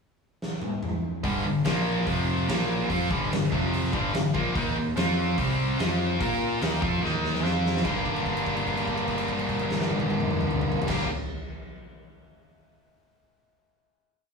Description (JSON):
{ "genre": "classic rock", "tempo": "146 BPM", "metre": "4/4", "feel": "straight", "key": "G minor", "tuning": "A4 = 443 Hz", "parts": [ { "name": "huge arena drum kit", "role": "drums", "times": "0.4-11.0 s", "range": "crash cymbal, hi-hat, kick drum, snare drum, toms", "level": "-30 LUFS", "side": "left 1 dB", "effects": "none" }, { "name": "distorted electric guitar", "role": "riff", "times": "1.2-11.1 s", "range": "F2 to Bb4", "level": "-30 LUFS", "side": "left 7 dB", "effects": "distortion" }, { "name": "tight distorted guitar", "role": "riff", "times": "1.2-11.1 s", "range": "F2 to Bb4", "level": "-28 LUFS", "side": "right 4 dB", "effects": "distortion" }, { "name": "growling picked electric bass", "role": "bass", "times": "1.2-11.1 s", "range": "F1 to Bb2", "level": "-31 LUFS", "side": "left 1 dB", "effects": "overdrive" } ], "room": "wet studio reverb, RT60 0.6 s", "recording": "band playing live in one room, studio ambience", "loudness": "-24 LUFS", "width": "side -4 dB against mid", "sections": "0.0-1.2 pickup bar; 1.2-7.8 riff; 7.8-11.1 final chord", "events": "drum fill 0.4-1.2, 7.0-7.8; held note 7.8-10.9", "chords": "0.0 N.C.; 1.2 G5; 1.7 Bb5; 2.1 F5; 2.5 Bb5; 2.9 G5; 3.5 F5; 3.9 Gm; 4.6 Eb5; 5.0 F5; 5.4 C5; 5.8 F5; 6.2 Bb5; 6.6 Eb5; 7.4 F5; 7.8 Gm", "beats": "0.00 0.41 0.83 | 1.24 1.66 2.07 2.49 | 2.90 3.31 3.73 4.14 | 4.56 4.97 5.38 5.79 | 6.20 6.62 7.03 7.44 | 7.85 8.26 8.67 9.08 | 9.48 9.89 10.30 10.71" }